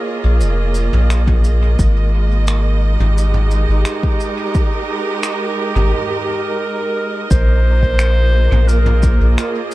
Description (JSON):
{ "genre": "ambient dub", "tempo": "87 BPM", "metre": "4/4", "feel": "straight", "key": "Bb dorian", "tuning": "A4 = 440 Hz", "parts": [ { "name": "clear studio string section", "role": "sustained chords", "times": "0.0-9.7 s", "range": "Ab3 to Eb5", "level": "-21 LUFS", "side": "right 3 dB", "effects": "none" }, { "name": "soft dub sub bass", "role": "bass", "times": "0.2-9.4 s", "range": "F1 to Bb1", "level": "-13 LUFS", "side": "equal", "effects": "none" }, { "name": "vintage brush drum kit", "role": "drums", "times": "0.4-9.7 s", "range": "finger snaps, shaker, toms", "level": "-26 LUFS", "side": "equal", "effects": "dub echo" }, { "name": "electronic kick drum", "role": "drums", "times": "1.3-9.2 s", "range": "none", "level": "-17 LUFS", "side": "equal", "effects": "none" }, { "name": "clear clarinet", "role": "melody", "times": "6.3-9.7 s", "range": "Bb4 to C5", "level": "-22 LUFS", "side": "equal", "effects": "dub echo" } ], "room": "studio ambience", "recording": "echo-heavy mix", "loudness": "-13 LUFS", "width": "side -17 dB against mid", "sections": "0.0-7.3 A section; 7.3-9.7 B section", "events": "break 5.9-7.3", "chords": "0.0 Bbm7; 1.8 Absus2; 7.3 Bb7(no3)" }